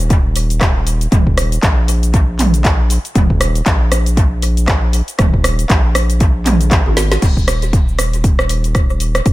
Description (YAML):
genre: afro house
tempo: 118 BPM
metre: 4/4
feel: swing 58% on 16ths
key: unclear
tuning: A4 = 440 Hz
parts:
  - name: round analog bass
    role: bass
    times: 0.0-9.3 s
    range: Eb1 to Bb1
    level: -16 LUFS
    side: equal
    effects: sidechain pumping
  - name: deep house drum kit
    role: drums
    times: 0.0-9.3 s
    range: crash cymbal, handclaps, hi-hat, rim click, shaker, snare drum, toms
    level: -18 LUFS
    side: equal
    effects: dub echo
  - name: electronic kick drum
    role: drums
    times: 0.1-9.3 s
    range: none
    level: -14 LUFS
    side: equal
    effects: none
room: little or no reverb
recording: echo-heavy mix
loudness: -12 LUFS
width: side -18 dB against mid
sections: 0.0-7.2 A section; 7.2-9.3 B section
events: drop 0.0-7.2; drum fill 6.8-7.2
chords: none